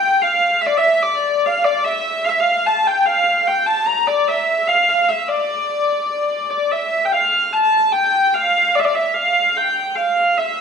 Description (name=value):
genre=medieval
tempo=147 BPM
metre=3/4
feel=straight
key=unclear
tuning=A4 = 439 Hz
part: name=warm hurdy-gurdy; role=solo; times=0.0-10.6 s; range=D5 to Bb5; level=-15 LUFS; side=equal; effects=none
room=wet stone room reverb, RT60 1.3 s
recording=band playing live in one room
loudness=-15 LUFS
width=side -6 dB against mid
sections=0.0-6.7 A section; 6.7-10.6 A section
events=none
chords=none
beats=0.17 | 0.58 0.99 1.40 | 1.81 2.22 2.62 | 3.03 3.44 3.85 | 4.26 4.66 5.07 | 5.48 5.89 6.30 | 6.70 7.11 7.52 | 7.93 8.34 8.74 | 9.15 9.56 9.97 | 10.38